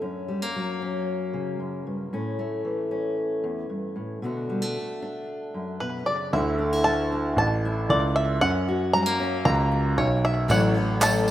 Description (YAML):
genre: indie folk with a building arrangement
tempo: 114 BPM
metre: 4/4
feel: straight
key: D major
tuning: A4 = 440 Hz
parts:
  - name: fingerpicked steel-string acoustic guitar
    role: accompaniment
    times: 0.0-10.5 s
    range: D2 to F#4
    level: -28 LUFS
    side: left 1 dB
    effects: none
  - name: bluegrass banjo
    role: melody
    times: 5.8-11.3 s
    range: B4 to A#5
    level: -26 LUFS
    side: equal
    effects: slapback echo
  - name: warm concert grand piano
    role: bass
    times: 6.3-11.3 s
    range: A1 to F#2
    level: -24 LUFS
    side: right 1 dB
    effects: none
  - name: clear upright piano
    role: accompaniment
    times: 10.5-11.3 s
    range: A1 to C#5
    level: -29 LUFS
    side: equal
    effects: none
  - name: picked twelve-string acoustic guitar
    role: accompaniment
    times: 10.5-11.3 s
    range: A2 to A4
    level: -24 LUFS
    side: left 4 dB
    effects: none
  - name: tambourine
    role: percussion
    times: 10.5-11.3 s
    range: none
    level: -33 LUFS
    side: right 3 dB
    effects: none
  - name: group handclap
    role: percussion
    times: 11.0-11.1 s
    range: none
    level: -26 LUFS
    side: right 2 dB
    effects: none
room: moderate lush hall reverb, RT60 2.8 s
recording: rough home demo mix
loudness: -23 LUFS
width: side -13 dB against mid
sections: 0.0-6.3 A section; 6.3-11.3 B section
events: build-up 6.3-11.3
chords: 0.0 F#; 2.1 A; 4.2 Bm7; 6.3 Dsus2; 8.4 F#; 10.5 A6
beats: | 0.02 0.55 1.08 1.60 | 2.13 2.66 3.18 3.71 | 4.23 4.76 5.28 5.81 | 6.33 6.86 7.38 7.90 | 8.42 8.94 9.46 9.98 | 10.50 11.02